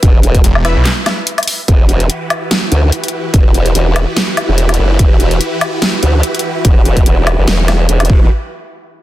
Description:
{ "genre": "heavy wobble dubstep", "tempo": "145 BPM", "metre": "4/4", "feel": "swing 54% on 16ths, half-time", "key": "E minor", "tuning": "A4 = 440 Hz", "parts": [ { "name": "formant-sweep wobble bass", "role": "bass", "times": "0.0-8.3 s", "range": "E1 to D2", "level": "-12 LUFS", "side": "equal", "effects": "chorus, overdrive" }, { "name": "dubstep drum kit", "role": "drums", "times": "0.0-8.1 s", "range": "handclaps, hi-hat, snare drum, woodblock", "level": "-16 LUFS", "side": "equal", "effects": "none" }, { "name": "electronic kick drum", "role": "drums", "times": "0.0-8.2 s", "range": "none", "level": "-9 LUFS", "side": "equal", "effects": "none" }, { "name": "snarling distorted saw bass", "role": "bass", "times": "0.4-0.9 s", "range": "E1 to B1", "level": "-12 LUFS", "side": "equal", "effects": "distortion, overdrive" }, { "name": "orchestra-hit-like synth stab", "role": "stabs", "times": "0.6-0.7 s", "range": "E4 to E5", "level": "-24 LUFS", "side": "left 2 dB", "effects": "built-in reverb, dub echo" }, { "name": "supersaw chords", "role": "sustained chords", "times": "1.7-8.3 s", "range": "E3 to B4", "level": "-20 LUFS", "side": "right 1 dB", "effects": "phaser, sidechain pumping" } ], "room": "little or no reverb", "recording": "dense, heavily limited modern master", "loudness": "-10 LUFS", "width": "side -15 dB against mid", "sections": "0.0-1.7 A section; 1.7-8.3 B section", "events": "drop 0.0-1.7; break 0.9-1.7", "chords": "0.0 E5; 1.7 Emadd9; 8.3 N.C.", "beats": "| 0.03 0.44 0.85 1.27 | 1.68 2.10 2.51 2.92 | 3.34 3.75 4.17 4.58 | 4.99 5.41 5.82 6.23 | 6.65 7.06 7.47 7.89" }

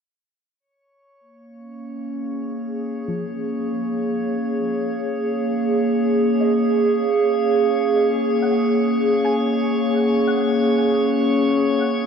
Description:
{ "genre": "ambient", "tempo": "free time", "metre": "none", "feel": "none", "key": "F# major", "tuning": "A4 = 440 Hz", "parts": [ { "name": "drifting glass-harmonics texture", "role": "texture", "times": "1.5-12.1 s", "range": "C#5 to C#6", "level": "-31 LUFS", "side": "left 3 dB", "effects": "chorus, built-in reverb, shimmer reverb" }, { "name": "warbly tape-like pad", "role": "sustained chords", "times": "1.2-12.1 s", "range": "A#3 to C#5", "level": "-18 LUFS", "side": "right 1 dB", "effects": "chorus, built-in reverb, shimmer reverb" }, { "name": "soft round pluck", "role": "arpeggios", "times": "3.1-12.1 s", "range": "E#3 to G#5", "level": "-35 LUFS", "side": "left 2 dB", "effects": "ensemble chorus, diffuse ambient delay, shimmer reverb" } ], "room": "wet cathedral reverb, RT60 6.6 s", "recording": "in a vast, echoing space", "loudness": "-18 LUFS", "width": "side -6 dB against mid", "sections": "0.6-12.1 A section", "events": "fade-in on synth pluck 0.6-12.1; fade-in on synth texture 0.6-12.1", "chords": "0.6 F#add9", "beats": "free time" }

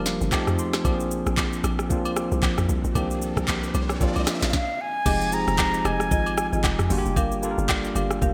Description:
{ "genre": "amapiano", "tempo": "114 BPM", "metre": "4/4", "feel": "swing 58% on 16ths", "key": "F dorian", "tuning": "A4 = 437 Hz", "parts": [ { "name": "bell-like tine electric piano", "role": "accompaniment", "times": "0.0-8.3 s", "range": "Eb3 to C6", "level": "-30 LUFS", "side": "equal", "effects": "none" }, { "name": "hollow log drum bass", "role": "bass", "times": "0.0-8.3 s", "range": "F1 to C2", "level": "-30 LUFS", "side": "equal", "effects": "none" }, { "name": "afro-pop drum kit", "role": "drums", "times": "0.1-8.3 s", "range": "crash cymbal, handclaps, hi-hat, kick drum, rim click, shaker, snare drum, toms", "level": "-28 LUFS", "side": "equal", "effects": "gated reverb" }, { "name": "agogo bells and woodblock", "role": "percussion", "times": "0.3-8.1 s", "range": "none", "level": "-37 LUFS", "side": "equal", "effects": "none" }, { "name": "riser", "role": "sound effects", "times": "2.6-4.5 s", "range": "none", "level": "-39 LUFS", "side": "equal", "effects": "none" }, { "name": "mellow concert flute", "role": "melody", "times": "4.5-6.9 s", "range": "F5 to Bb5", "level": "-29 LUFS", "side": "equal", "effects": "digital delay" }, { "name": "marimba with medium mallets", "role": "stabs", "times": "5.1-8.3 s", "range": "F4 to F5", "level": "-34 LUFS", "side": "equal", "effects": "digital delay" } ], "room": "moderate lush hall reverb, RT60 1.9 s", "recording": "bright 1980s-style digital production", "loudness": "-24 LUFS", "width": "mono", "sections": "0.0-5.1 A section; 5.1-8.3 B section", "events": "tine electric piano fill 0.0-0.8; riser 2.6-5.1; stop 4.5-5.1; drop 5.1-8.3", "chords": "0.3 F7; 0.8 Bb9; 3.0 C9sus4; 5.1 Fm9; 6.9 Gm7", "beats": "0.32 | 0.85 1.38 1.90 2.43 | 2.95 3.48 4.01 4.53 | 5.06 5.58 6.11 6.64 | 7.16 7.69 8.22" }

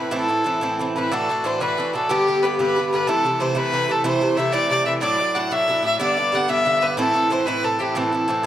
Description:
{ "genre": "celtic folk, Celtic jig", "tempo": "123 BPM (dotted quarters)", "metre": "6/8", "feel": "straight", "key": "A dorian", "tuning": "A4 = 440 Hz", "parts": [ { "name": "rich fiddle", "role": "melody", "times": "0.0-8.5 s", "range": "G4 to F#5", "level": "-20 LUFS", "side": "left 1 dB", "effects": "tape echo" }, { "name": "Irish bouzouki", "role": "accompaniment", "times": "0.0-8.5 s", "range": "G2 to G4", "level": "-22 LUFS", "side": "right 1 dB", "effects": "none" } ], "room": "light reverb", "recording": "close, detailed microphones", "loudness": "-18 LUFS", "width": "side -11 dB against mid", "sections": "0.0-1.1 A section; 1.1-8.5 B section", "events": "none", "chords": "0.0 Am; 1.1 Dadd9; 2.1 G; 3.1 Am; 5.0 Dadd9; 6.0 G; 7.0 Am", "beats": "| 0.13 0.62 | 1.12 1.61 | 2.10 2.59 | 3.08 3.56 | 4.05 4.54 | 5.03 5.52 | 6.00 6.49 | 6.98 7.47 | 7.95 8.44" }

